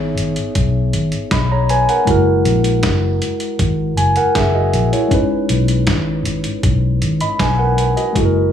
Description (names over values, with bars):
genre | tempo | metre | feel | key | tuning
lovers rock reggae | 79 BPM | 4/4 | straight | B major | A4 = 442 Hz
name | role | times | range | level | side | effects
mellow tine electric piano | accompaniment | 0.0-8.5 s | G#3 to B5 | -17 LUFS | equal | medium stereo tremolo
vintage muted fingered electric bass | bass | 0.0-8.5 s | F#1 to B1 | -17 LUFS | left 1 dB | none
boom bap sampler-style drum kit | drums | 0.2-8.3 s | hi-hat, kick drum, snare drum | -21 LUFS | equal | none
room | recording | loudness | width
light reverb | studio reverb | -14 LUFS | side -9 dB against mid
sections
0.0-8.5 A section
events
none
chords
0.0 B69; 2.1 F#9; 5.1 B69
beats
0.55 1.31 | 2.07 2.83 3.59 4.35 | 5.11 5.87 6.63 7.39 | 8.16